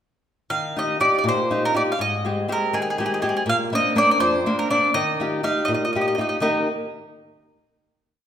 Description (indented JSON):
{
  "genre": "italian folk, Italian serenade",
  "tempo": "81 BPM (dotted quarters)",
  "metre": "6/8",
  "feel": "straight",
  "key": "Eb major",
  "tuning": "A4 = 437 Hz",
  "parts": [
    { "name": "bowl-back mandolin", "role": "melody", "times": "0.5-6.7 s", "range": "Ab4 to F5", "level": "-21 LUFS", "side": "right 1 dB", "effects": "none" },
    { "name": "flamenco guitar", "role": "accompaniment", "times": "0.5-6.7 s", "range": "F2 to Bb4", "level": "-23 LUFS", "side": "left 1 dB", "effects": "none" }
  ],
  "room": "wet recital hall reverb, RT60 1.3 s",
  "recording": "minimal, uncompressed stereo recording",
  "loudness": "-19 LUFS",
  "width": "side -9 dB against mid",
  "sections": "0.5-6.4 A section; 6.4-7.9 final chord",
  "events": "none",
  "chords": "0.5 Ebadd9; 2.0 Abmaj7; 3.5 Bbadd9; 4.9 Ebadd9; 6.4 Eb"
}